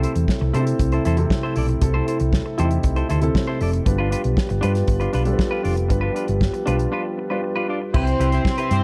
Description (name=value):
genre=disco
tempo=118 BPM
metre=4/4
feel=straight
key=C major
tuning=A4 = 440 Hz
part: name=semi-hollow electric guitar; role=accompaniment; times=0.0-8.8 s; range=D4 to D5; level=-31 LUFS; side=equal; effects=none
part: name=warm baby grand piano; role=accompaniment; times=0.0-8.8 s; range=C3 to C5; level=-28 LUFS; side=equal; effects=none
part: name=dark French horn section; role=sustained chords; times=0.0-8.8 s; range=C3 to G4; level=-32 LUFS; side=equal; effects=none
part: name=hollow-body short-scale fingered electric bass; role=bass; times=0.0-8.8 s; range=F1 to C3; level=-23 LUFS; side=equal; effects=none
part: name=damped 70s drum kit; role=drums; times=0.0-8.8 s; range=crash cymbal, hi-hat, kick drum, snare drum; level=-25 LUFS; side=equal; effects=none
part: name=warm studio string section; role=second line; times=7.9-8.8 s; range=C4 to C5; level=-27 LUFS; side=equal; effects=slapback echo
room=light reverb, studio reverb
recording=dark, warm production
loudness=-21 LUFS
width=mono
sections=0.0-7.9 A section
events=break 6.9-7.9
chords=0.0 C6; 3.9 G7; 7.9 Cmaj7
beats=0.28 0.80 1.31 | 1.82 2.33 2.84 3.35 | 3.86 4.37 4.88 5.39 | 5.90 6.41 6.92 7.43 | 7.94 8.45